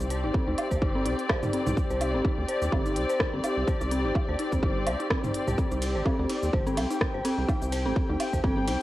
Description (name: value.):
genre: minimal techno.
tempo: 126 BPM.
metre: 4/4.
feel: swing 56% on 16ths.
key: C minor.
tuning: A4 = 441 Hz.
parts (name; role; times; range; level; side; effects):
rubbery square bass; bass; 0.0-8.8 s; G1 to Eb2; -31 LUFS; equal; sidechain pumping.
house drum kit; drums; 0.0-8.8 s; cabasa, hi-hat, ride cymbal, rim click; -34 LUFS; equal; studio reverb, cassette tape.
muted studio string section; texture; 0.0-8.8 s; C4 to G5; -31 LUFS; left 2 dB; sidechain pumping.
dark detuned synth bell; riff; 0.1-8.7 s; C4 to C5; -31 LUFS; equal; chorus, sidechain pumping, analog delay.
electronic kick drum; drums; 0.3-8.5 s; none; -28 LUFS; equal; studio reverb, cassette tape.
electronic woodblock and toms; percussion; 0.6-8.3 s; none; -34 LUFS; right 2 dB; studio reverb, cassette tape, tape echo.
room: digital ambience.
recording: home recording on cassette.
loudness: -24 LUFS.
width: side -16 dB against mid.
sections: 0.0-8.8 A section.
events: none.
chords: 0.0 Cm.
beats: 0.34 0.82 1.29 | 1.77 2.25 2.72 3.20 | 3.68 4.15 4.63 5.11 | 5.58 6.06 6.53 7.01 | 7.49 7.96 8.44.